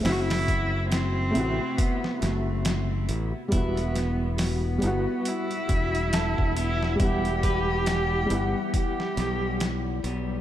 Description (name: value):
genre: trip hop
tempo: 69 BPM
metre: 4/4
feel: swing 58% on 16ths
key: E minor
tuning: A4 = 440 Hz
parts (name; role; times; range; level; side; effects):
- dark cello; melody; 0.0-10.0 s; A3 to G4; -29 LUFS; equal; tape echo
- felt-muted upright piano; accompaniment; 0.0-10.4 s; C3 to F#5; -31 LUFS; equal; tremolo, tape echo
- modern bright fingered electric bass; bass; 0.0-10.4 s; E1 to B1; -28 LUFS; equal; none
- boom bap sampler-style drum kit; drums; 0.0-10.3 s; hi-hat, kick drum, snare drum; -29 LUFS; equal; overdrive, studio reverb
- warbly tape-like pad; sustained chords; 4.2-10.4 s; G3 to F#5; -35 LUFS; left 4 dB; chorus, built-in reverb, phaser, vintage 12-bit sampler grit
- clean electric guitar; arpeggios; 3.5-10.4 s; E3 to B4; -37 LUFS; equal; tape echo
room: moderate plate reverb, RT60 2.4 s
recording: dreamy mix soaked in reverb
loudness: -23 LUFS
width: side -12 dB against mid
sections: 0.0-10.4 A section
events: fade-out 8.2-10.4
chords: 0.0 F#m7b5; 3.5 Emadd9